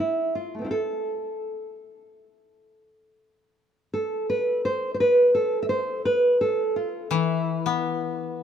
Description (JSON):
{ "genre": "japanese traditional, Japanese chamber music", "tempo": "56 BPM", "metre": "4/4", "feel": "rubato", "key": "E miyako bushi", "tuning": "A4 = 437 Hz", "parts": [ { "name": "nylon-string guitar", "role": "melody", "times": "0.0-8.4 s", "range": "A3 to E5", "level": "-23 LUFS", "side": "right 1 dB", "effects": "none" }, { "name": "koto", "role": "accompaniment", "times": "7.1-8.4 s", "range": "E3 to B3", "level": "-24 LUFS", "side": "left 9 dB", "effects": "none" } ], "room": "wet plate reverb, RT60 2.8 s", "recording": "heard from further back in the room", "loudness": "-22 LUFS", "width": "side -8 dB against mid", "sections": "0.0-8.4 A section", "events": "none", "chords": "none", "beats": "| 0.71 1.79 2.88 3.95 | 5.00 6.06 7.13 8.21" }